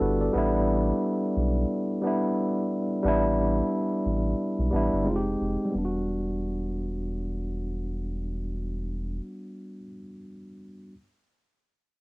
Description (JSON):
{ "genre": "R&B, neo-soul", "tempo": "89 BPM", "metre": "4/4", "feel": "swing 56% on 16ths", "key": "E minor", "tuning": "A4 = 438 Hz", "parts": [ { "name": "tine electric piano", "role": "accompaniment", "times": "0.0-11.0 s", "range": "G3 to D5", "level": "-27 LUFS", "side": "equal", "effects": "cassette tape" }, { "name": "round analog bass", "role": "bass", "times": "0.0-9.2 s", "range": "E1 to B1", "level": "-29 LUFS", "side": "equal", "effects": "none" } ], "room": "moderate studio reverb, RT60 0.5 s", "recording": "home recording on cassette", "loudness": "-25 LUFS", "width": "side -24 dB against mid", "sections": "0.0-5.7 A section; 5.7-8.4 B section", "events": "none", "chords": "0.3 A7sus4; 5.1 Fm9; 5.7 Em9" }